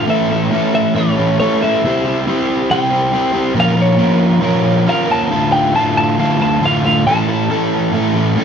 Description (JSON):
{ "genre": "rock", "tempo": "138 BPM", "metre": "4/4", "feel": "straight", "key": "unclear", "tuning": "A4 = 440 Hz", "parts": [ { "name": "twelve-string electric guitar", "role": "melody", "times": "0.0-7.9 s", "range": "C#5 to A5", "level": "-18 LUFS", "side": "left 1 dB", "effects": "none" }, { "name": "overdriven semi-hollow guitar", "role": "riff", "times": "0.0-8.4 s", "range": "D2 to C5", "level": "-14 LUFS", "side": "equal", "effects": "spring reverb" } ], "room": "wet large studio reverb, RT60 0.8 s", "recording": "band playing live in one room", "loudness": "-12 LUFS", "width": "side -7 dB against mid", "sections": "0.0-8.4 A section", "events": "none", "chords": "0.1 A; 1.8 C; 3.6 Bbm; 5.3 Dm; 7.1 A" }